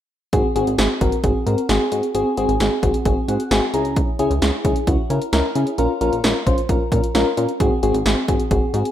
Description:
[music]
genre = synth-pop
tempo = 132 BPM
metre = 4/4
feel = straight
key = Ab mixolydian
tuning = A4 = 440 Hz
[part]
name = mellow FM electric piano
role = accompaniment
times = 0.3-8.9 s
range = C4 to Bb5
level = -20 LUFS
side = left 1 dB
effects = chorus
[part]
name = chorused synth bass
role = bass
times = 0.3-8.8 s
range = Ab1 to Db3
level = -22 LUFS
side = equal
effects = none
[part]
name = punchy analog drum machine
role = drums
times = 0.3-8.9 s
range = hi-hat, kick drum, snare drum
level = -21 LUFS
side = right 1 dB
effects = none
[sound]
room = wet digital room reverb, RT60 1.1 s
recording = rough home demo mix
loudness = -17 LUFS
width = side -11 dB against mid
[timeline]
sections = 0.3-8.9 A section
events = FM electric piano fill 3.1-4.0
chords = 0.3 Ab7; 3.7 Dbm; 5.8 Bbm; 7.6 Ab7

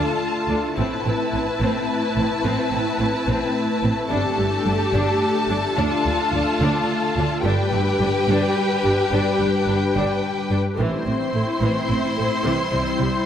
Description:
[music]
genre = cinematic, hybrid orchestral and electronic film score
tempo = 72 BPM (dotted quarters)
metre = 6/8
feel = straight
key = A minor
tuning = A4 = 440 Hz
[part]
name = warm symphonic violin section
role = second line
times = 0.0-13.3 s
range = A4 to C6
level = -25 LUFS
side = left 3 dB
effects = none
[part]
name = warm symphonic viola section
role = accompaniment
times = 0.0-13.3 s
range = E3 to G4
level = -25 LUFS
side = equal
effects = none
[part]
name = hollow soft pad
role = sustained chords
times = 0.0-13.3 s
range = G3 to C5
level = -25 LUFS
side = left 2 dB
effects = ensemble chorus
[part]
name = rich studio double bass section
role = bass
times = 0.0-13.1 s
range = G1 to D2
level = -27 LUFS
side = right 2 dB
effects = none
[part]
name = rich symphonic cello section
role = bass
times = 0.5-13.1 s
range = D2 to C3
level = -27 LUFS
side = right 2 dB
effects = none
[sound]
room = wet scoring stage reverb, RT60 1.9 s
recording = none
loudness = -19 LUFS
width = side -9 dB against mid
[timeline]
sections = 0.0-10.8 A section; 10.8-13.3 B section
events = none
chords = 0.0 Dm; 0.8 Amadd9; 4.1 Gsus2; 5.8 Dm; 7.4 G; 10.8 Am; 12.4 C

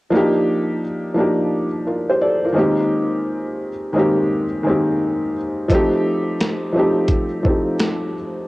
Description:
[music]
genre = lo-fi hip hop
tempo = 86 BPM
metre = 4/4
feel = swing 65% on 16ths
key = unclear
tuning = A4 = 439 Hz
[part]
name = felt-muted upright piano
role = accompaniment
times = 0.1-8.5 s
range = Eb3 to D5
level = -17 LUFS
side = equal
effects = cassette tape
[part]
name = boom bap sampler-style drum kit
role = drums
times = 5.7-8.0 s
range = hi-hat, kick drum, snare drum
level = -21 LUFS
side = equal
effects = overdrive, vintage 12-bit sampler grit, cassette tape
[sound]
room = moderate spring reverb, RT60 2.8 s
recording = home recording on cassette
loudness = -17 LUFS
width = side -19 dB against mid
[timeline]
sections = 0.1-8.5 A section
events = none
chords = 0.1 Ebmaj9; 2.6 Abmaj7/Eb; 5.7 F7

